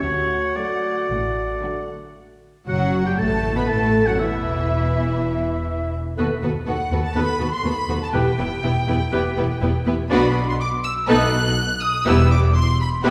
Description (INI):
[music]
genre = quick classical-period movement for symphony orchestra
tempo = 121 BPM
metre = 4/4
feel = rubato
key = E minor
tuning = A4 = 440 Hz
[part]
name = rich chamber violin section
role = melody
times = 0.0-13.1 s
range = E5 to F#6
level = -32 LUFS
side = equal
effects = none
[part]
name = warm oboe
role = second line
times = 0.0-13.1 s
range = B4 to B5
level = -30 LUFS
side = equal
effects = none
[part]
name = warm French horn section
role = sustained chords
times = 0.0-13.1 s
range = E3 to A4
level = -31 LUFS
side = equal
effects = none
[part]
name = rich studio double bass section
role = bass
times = 0.0-13.1 s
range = E1 to D#2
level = -27 LUFS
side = equal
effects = none
[part]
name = rich symphonic cello section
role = bass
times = 0.0-13.1 s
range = D2 to B2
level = -28 LUFS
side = equal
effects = none
[part]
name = rich chamber violin section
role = second line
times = 0.6-13.1 s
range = A3 to B4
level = -31 LUFS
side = equal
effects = none
[part]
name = clear studio viola section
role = accompaniment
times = 0.6-13.1 s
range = D3 to F#4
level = -29 LUFS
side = equal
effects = none
[part]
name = bright clarinet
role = second line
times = 2.7-13.1 s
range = E4 to B4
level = -32 LUFS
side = equal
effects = none
[part]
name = silver concert flute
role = second line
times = 2.7-13.1 s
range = E5 to F#6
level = -31 LUFS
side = equal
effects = none
[sound]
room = wet scoring stage reverb, RT60 1.9 s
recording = heard from further back in the room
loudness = -21 LUFS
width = mono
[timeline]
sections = 0.0-2.2 A section; 2.2-13.1 B section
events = none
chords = 0.0 D; 2.2 F#madd11; 4.2 N.C.; 6.2 B7/D#; 8.1 Em; 10.1 Bm; 11.1 B7; 12.1 Em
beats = | 0.02 0.56 1.10 1.64 | 2.17 2.68 3.18 3.69 | 4.19 4.69 5.19 5.69 | 6.18 6.67 7.16 7.65 | 8.14 8.63 9.13 9.62 | 10.11 10.60 11.09 11.58 | 12.06 12.56 13.05